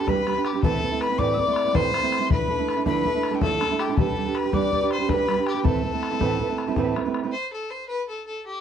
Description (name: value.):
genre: celtic folk, Celtic slip jig.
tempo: 108 BPM (dotted quarters).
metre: 9/8.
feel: straight.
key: A minor.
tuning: A4 = 436 Hz.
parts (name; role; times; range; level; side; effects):
rich fiddle; melody; 0.0-8.6 s; G4 to D5; -26 LUFS; left 3 dB; none.
breathy bright mid whistle; second line; 0.0-7.0 s; G5 to E6; -31 LUFS; left 6 dB; none.
fingerpicked steel-string acoustic guitar; accompaniment; 0.0-7.3 s; A2 to B4; -24 LUFS; right 8 dB; none.
bodhran; percussion; 0.1-7.2 s; none; -27 LUFS; left 4 dB; none.
room: little or no reverb.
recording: dry, close 1970s-style studio recording, faint mains hum.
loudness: -21 LUFS.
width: side -8 dB against mid.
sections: 0.0-7.3 A section; 7.3-8.6 B section.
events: none.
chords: 0.0 G; 0.6 Amadd9; 2.3 Dmadd9; 4.0 G; 5.7 Amadd9; 7.3 N.C..